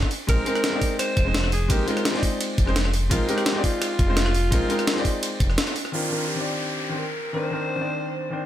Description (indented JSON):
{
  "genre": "liquid drum and bass",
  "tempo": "170 BPM",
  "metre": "4/4",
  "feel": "straight",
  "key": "C minor",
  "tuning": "A4 = 440 Hz",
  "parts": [
    { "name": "breakbeat sampler-style drum kit", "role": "drums", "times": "0.0-5.9 s", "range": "hi-hat, ride cymbal, rim click, snare drum", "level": "-26 LUFS", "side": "equal", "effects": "none" },
    { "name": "electronic kick drum", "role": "drums", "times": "0.0-5.5 s", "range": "none", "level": "-23 LUFS", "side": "equal", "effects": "none" },
    { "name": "growling alto saxophone", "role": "melody", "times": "0.3-8.5 s", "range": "F4 to C5", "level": "-29 LUFS", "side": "equal", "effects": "digital delay" },
    { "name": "clear grand piano", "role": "accompaniment", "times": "0.3-8.4 s", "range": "Eb3 to D5", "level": "-27 LUFS", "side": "left 1 dB", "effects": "low-pass filter" },
    { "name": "smooth gliding synth bass", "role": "bass", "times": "0.3-5.6 s", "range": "F1 to Bb1", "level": "-24 LUFS", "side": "equal", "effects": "none" },
    { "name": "downlifter", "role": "sound effects", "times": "5.9-8.5 s", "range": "none", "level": "-30 LUFS", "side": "equal", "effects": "none" }
  ],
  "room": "light reverb",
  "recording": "none",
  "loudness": "-21 LUFS",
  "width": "side -12 dB against mid",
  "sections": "0.0-5.9 A section; 5.9-8.5 B section",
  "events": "drop 0.0-5.9; kick drops out 5.6-5.9; band accent 5.6; filter sweep on grand piano 5.9-8.5",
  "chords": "0.1 Bb9sus4; 5.9 Cm9",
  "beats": "| 0.29 0.64 0.99 1.35 | 1.70 2.05 2.40 2.76 | 3.11 3.46 3.82 4.17 | 4.52 4.88 5.23 5.58 | 5.93 6.29 6.64 6.99 | 7.35 7.70 8.05 8.40"
}